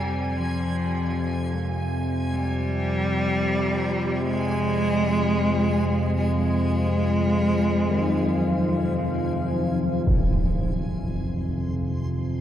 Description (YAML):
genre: dark ambient drone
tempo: free time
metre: none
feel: none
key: F minor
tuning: A4 = 437 Hz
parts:
  - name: rich cello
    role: melody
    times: 0.0-9.1 s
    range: F3 to Ab3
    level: -26 LUFS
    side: equal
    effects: tape echo
  - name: analog drone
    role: drone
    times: 0.0-12.4 s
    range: F2 to C3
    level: -26 LUFS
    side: equal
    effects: chorus
  - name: backwards swelling texture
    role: texture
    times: 0.0-12.4 s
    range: Ab5 to C6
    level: -38 LUFS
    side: equal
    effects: built-in reverb
  - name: carillon bells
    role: arpeggios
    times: 1.5-12.4 s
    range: Eb3 to F3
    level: -31 LUFS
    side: equal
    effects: tape echo
  - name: deep dark ambient pad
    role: sustained chords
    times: 4.7-12.4 s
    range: F3 to F5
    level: -30 LUFS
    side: left 1 dB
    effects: chorus, built-in reverb
  - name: impact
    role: percussion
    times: 10.1-10.3 s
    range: none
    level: -25 LUFS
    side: equal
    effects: low-pass filter on sfx
room: wet cathedral reverb, RT60 5.8 s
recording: dark, warm production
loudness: -22 LUFS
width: side -11 dB against mid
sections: 0.0-10.1 A section; 10.1-12.4 B section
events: fade-in on synth drone 0.0-10.1; fade-in on church bells 0.0-10.1; fade-in on cello 0.0-10.1; fade-out on synth texture 0.0-10.1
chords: 0.0 Fm; 10.1 F5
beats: free time